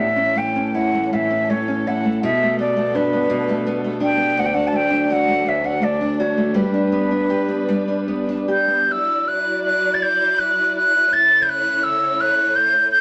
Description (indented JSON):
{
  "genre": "celtic folk, Celtic slow air",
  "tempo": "72-86 BPM",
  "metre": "3/4",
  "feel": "rubato",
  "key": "unclear",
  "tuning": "A4 = 441 Hz",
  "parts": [
    { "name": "breathy concert flute", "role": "melody", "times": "0.0-13.0 s", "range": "B4 to A6", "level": "-21 LUFS", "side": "equal", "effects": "none" },
    { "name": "nylon-string guitar", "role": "accompaniment", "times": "0.0-9.5 s", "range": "D2 to G4", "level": "-22 LUFS", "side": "equal", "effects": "none" },
    { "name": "warm studio string section", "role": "sustained chords", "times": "0.0-13.0 s", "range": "B2 to D5", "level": "-30 LUFS", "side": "equal", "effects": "none" }
  ],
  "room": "wet studio reverb, RT60 0.6 s",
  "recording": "vinyl crackle",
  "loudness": "-19 LUFS",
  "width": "mono",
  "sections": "0.0-8.9 A section; 8.9-13.0 B section",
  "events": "none",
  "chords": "0.0 A; 2.2 Gadd9/B; 4.4 D; 6.6 G; 8.9 Dadd9; 11.1 A/C#"
}